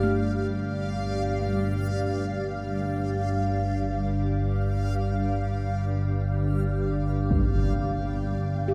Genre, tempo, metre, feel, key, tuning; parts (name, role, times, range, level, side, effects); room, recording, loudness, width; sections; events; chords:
dark ambient drone; free time; G minor; A4 = 438 Hz
granular cloud pad; sustained chords; 0.0-8.7 s; G3 to D5; -34 LUFS; equal; built-in reverb
gamelan-type bossed gongs; arpeggios; 0.0-8.7 s; Bb2 to G4; -37 LUFS; equal; diffuse ambient delay
organ-like drone; drone; 0.0-8.7 s; G1 to G2; -29 LUFS; equal; ensemble chorus, built-in reverb
backwards swelling texture; texture; 0.0-8.7 s; F5 to G5; -38 LUFS; equal; built-in reverb, subtle chorus
impact; percussion; 7.3-7.5 s; -30 LUFS; equal; low-pass filter on sfx
wet huge ambient reverb, RT60 8.7 s; dreamy mix soaked in reverb; -27 LUFS; mono
0.0-8.7 A section
0.0 Gm; 7.3 N.C.